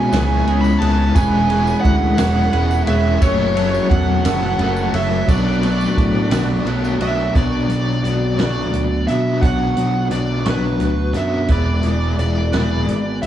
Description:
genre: indie rock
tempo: 58 BPM (dotted quarters)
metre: 6/8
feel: straight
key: B dorian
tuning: A4 = 440 Hz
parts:
  - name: smooth overdriven lead guitar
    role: melody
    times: 0.0-13.3 s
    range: B4 to B5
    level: -23 LUFS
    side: right 2 dB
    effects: tape echo, plate reverb
  - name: overdriven combo organ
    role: sustained chords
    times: 0.0-7.3 s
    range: G#3 to B5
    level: -31 LUFS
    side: right 2 dB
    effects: none
  - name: biting overdriven guitar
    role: riff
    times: 0.0-13.3 s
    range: F#2 to E4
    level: -22 LUFS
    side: left 6 dB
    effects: tremolo
  - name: twelve-string electric guitar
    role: riff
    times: 0.0-13.3 s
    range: F#2 to C#5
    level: -23 LUFS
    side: right 5 dB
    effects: analog chorus
  - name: fuzz picked electric bass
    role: bass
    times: 0.0-13.3 s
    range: E1 to B2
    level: -20 LUFS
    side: equal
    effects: overdrive
  - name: vintage drum kit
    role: drums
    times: 0.1-13.3 s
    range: hi-hat, kick drum, ride cymbal, snare drum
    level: -22 LUFS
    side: equal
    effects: vintage 12-bit sampler grit
  - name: tambourine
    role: percussion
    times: 0.1-7.1 s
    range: none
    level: -41 LUFS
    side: right 6 dB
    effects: none
room: light reverb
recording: small room ambience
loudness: -15 LUFS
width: side -11 dB against mid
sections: 0.0-7.4 A section; 7.4-13.3 B section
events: none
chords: 0.0 C#m7; 1.2 E6; 3.2 F#m7; 5.3 Bm7; 7.4 Bmadd9; 11.5 E

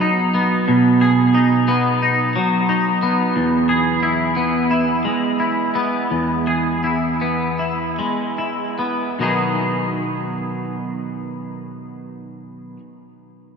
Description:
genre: rock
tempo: 72-90 BPM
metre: 4/4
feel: straight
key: B major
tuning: A4 = 439 Hz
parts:
  - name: twangy electric guitar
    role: arpeggios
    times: 0.0-12.8 s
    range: E2 to G#4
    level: -17 LUFS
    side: equal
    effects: analog chorus, diffuse ambient delay
room: wet cathedral reverb, RT60 5.7 s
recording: dreamy mix soaked in reverb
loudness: -16 LUFS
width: side -6 dB against mid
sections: 0.0-9.2 A section; 9.2-12.6 B section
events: slowing down 3.4-9.2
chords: 0.0 B6; 3.4 E; 9.2 B6

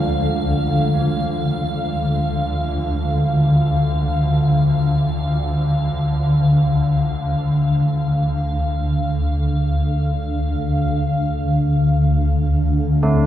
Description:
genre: dark ambient drone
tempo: free time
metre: none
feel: none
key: D minor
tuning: A4 = 438 Hz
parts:
  - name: carillon bells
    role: arpeggios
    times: 0.0-4.3, 13.0-13.3 s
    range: F3 to A3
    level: -30 LUFS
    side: right 3 dB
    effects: diffuse ambient delay, shimmer reverb
  - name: swarming drone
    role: drone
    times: 0.0-13.3 s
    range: D2 to D3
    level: -17 LUFS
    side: equal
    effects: built-in reverb
  - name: icy glass pad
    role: texture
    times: 0.0-10.9 s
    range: F5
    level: -27 LUFS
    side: equal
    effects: chorus, built-in reverb, shimmer reverb
room: wet cathedral reverb, RT60 5.5 s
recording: dark, warm production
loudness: -16 LUFS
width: side -12 dB against mid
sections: 0.0-10.9 A section; 10.9-13.3 B section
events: none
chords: 0.0 Dm; 10.9 D5

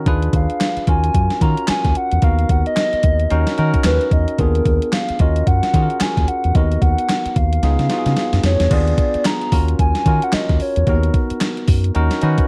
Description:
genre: R&B, new jack swing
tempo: 111 BPM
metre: 4/4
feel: swing 60% on 16ths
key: Eb minor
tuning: A4 = 441 Hz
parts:
  - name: bell-like tine electric piano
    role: accompaniment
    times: 0.0-12.5 s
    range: A#3 to B4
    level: -26 LUFS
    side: equal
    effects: none
  - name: deep dub fingered electric bass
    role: bass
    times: 0.1-12.4 s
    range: Db2 to Eb3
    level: -20 LUFS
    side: equal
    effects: none
  - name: gated 80s digital drum machine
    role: drums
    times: 0.1-12.5 s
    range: crash cymbal, handclaps, hi-hat, kick drum, snare drum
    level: -21 LUFS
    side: equal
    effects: gated reverb, gated reverb snare, overdrive
  - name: hollow clarinet-like synth lead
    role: melody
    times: 0.3-11.2 s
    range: Bb4 to Bb5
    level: -24 LUFS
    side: equal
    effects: chorus
room: little or no reverb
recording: dry, close 1970s-style studio recording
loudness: -17 LUFS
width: mono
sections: 0.0-8.7 A section; 8.7-12.5 B section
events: drum fill 7.6-8.7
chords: 0.1 Bdim7; 0.9 Ebm7; 2.2 Bmaj7#11/D#; 3.3 Ebm7; 4.4 Bb7b9/Eb; 5.2 Ebm7; 6.5 Bmaj7#11/D#; 7.6 Db7; 8.7 Bb7b9; 9.5 Ebm7; 10.9 Bmaj9/D#; 12.0 Bmaj7/D#

